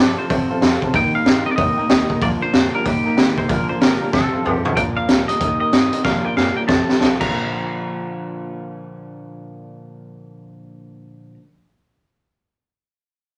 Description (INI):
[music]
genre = rockabilly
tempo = 188 BPM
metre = 4/4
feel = swing 63% on 8ths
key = Bb major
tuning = A4 = 440 Hz
[part]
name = twangy electric guitar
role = melody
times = 0.0-11.3 s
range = G4 to Bb5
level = -26 LUFS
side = equal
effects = none
[part]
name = bright upright piano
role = accompaniment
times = 0.0-11.4 s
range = C5 to Bb5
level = -33 LUFS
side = equal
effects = none
[part]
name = picked steel-string acoustic guitar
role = accompaniment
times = 0.0-11.4 s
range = Bb2 to Bb4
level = -32 LUFS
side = equal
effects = none
[part]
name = electric guitar through a small old amp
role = riff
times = 0.0-11.4 s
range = F2 to D4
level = -27 LUFS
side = equal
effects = none
[part]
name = upright bass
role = bass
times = 0.0-11.3 s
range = F1 to Bb2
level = -37 LUFS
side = equal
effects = none
[part]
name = raw garage drum kit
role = drums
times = 0.3-7.3 s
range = crash cymbal, hi-hat, kick drum, snare drum, toms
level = -20 LUFS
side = equal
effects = none
[sound]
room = moderate club reverb, RT60 0.8 s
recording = none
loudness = -18 LUFS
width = mono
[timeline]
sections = 0.0-4.8 A section; 4.8-7.3 B section; 7.3-9.9 C section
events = drum fill 4.1-4.8, 6.0-7.3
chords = 0.0 F; 0.9 Eb; 2.2 Bb; 2.9 Eb; 3.5 Bb; 4.1 F; 4.8 Bb; 5.4 Eb; 6.0 Bb; 6.7 F; 7.2 Bb